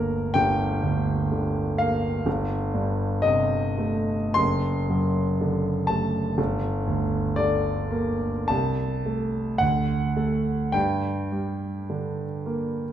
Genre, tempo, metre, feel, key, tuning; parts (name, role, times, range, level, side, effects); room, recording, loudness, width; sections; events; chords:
classical, romantic nocturne for solo piano; 50-64 BPM; 4/4; rubato; G minor; A4 = 440 Hz
warm concert grand piano; solo; 0.0-12.9 s; F#1 to C6; -22 LUFS; equal
wet recital hall reverb, RT60 1.7 s; minimal, uncompressed stereo recording; -22 LUFS; side -10 dB against mid
0.0-12.9 A section
0.0 Gm; 2.3 Am7b5/G; 4.4 D7/F#; 6.4 Gm; 8.5 Am/C; 9.6 D; 10.7 Gm